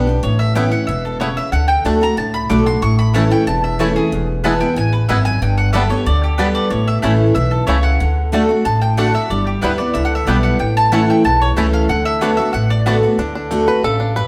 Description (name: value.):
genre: bluegrass.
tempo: 185 BPM.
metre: 4/4.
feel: straight.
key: D major.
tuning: A4 = 441 Hz.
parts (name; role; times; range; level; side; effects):
picked steel-string acoustic guitar; accompaniment; 0.0-14.3 s; E2 to G4; -20 LUFS; equal; none.
upright bass; bass; 0.0-14.3 s; E1 to D2; -20 LUFS; equal; none.
mandolin; melody; 0.2-12.8 s; G4 to D6; -23 LUFS; equal; none.
bluegrass banjo; melody; 0.6-14.3 s; G3 to B4; -26 LUFS; equal; none.
mandolin; stabs; 3.1-13.0 s; A3 to A5; -28 LUFS; equal; none.
room: wet stone room reverb, RT60 1.3 s.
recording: band playing live in one room.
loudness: -16 LUFS.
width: mono.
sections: 0.0-13.2 A section; 13.2-14.3 B section.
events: five-string banjo solo 13.2-14.3.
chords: 0.2 Aadd9; 1.5 D; 2.8 A; 4.1 E; 5.4 Gadd9; 6.7 A; 8.0 D; 9.3 G6; 10.6 A; 11.9 D6; 13.2 D.